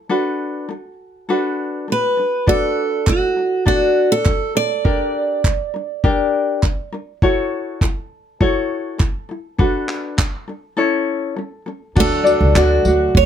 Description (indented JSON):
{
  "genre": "acoustic pop",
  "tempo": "101 BPM",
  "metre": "4/4",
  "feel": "straight",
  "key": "D major",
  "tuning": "A4 = 441 Hz",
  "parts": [
    { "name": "tenor ukulele", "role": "accompaniment", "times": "0.0-13.3 s", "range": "C#4 to D5", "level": "-19 LUFS", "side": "left 4 dB", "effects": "none" },
    { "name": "picked steel-string acoustic guitar", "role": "melody", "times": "1.9-6.9, 12.0-13.3 s", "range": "F#4 to D5", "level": "-18 LUFS", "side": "right 4 dB", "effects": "plate reverb" },
    { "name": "dusty soul sampler-style drum kit", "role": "drums", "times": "2.5-13.3 s", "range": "crash cymbal, handclaps, kick drum, tambourine", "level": "-18 LUFS", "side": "right 1 dB", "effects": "none" },
    { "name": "group handclap", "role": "percussion", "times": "3.1-12.7 s", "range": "none", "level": "-26 LUFS", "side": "right 4 dB", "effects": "none" },
    { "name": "pedal harmonium", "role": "sustained chords", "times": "12.0-13.3 s", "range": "D3 to F#4", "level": "-28 LUFS", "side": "right 2 dB", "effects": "none" },
    { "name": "upright bass", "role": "bass", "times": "12.0-13.3 s", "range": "C#2 to D2", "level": "-17 LUFS", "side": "right 1 dB", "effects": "none" }
  ],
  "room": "light reverb",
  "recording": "none",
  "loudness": "-16 LUFS",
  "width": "side -9 dB against mid",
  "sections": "0.0-12.0 A section; 12.0-13.3 B section",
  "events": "none",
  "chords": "0.1 Bm7; 2.5 D; 4.8 Gm; 7.2 F#m7; 9.6 Bm7; 10.8 A; 12.0 D",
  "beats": "| 0.10 0.69 1.29 1.88 | 2.47 3.07 3.66 4.25 | 4.85 5.44 6.04 6.63 | 7.22 7.82 8.41 9.00 | 9.59 10.19 10.78 11.37 | 11.96 12.56 13.15"
}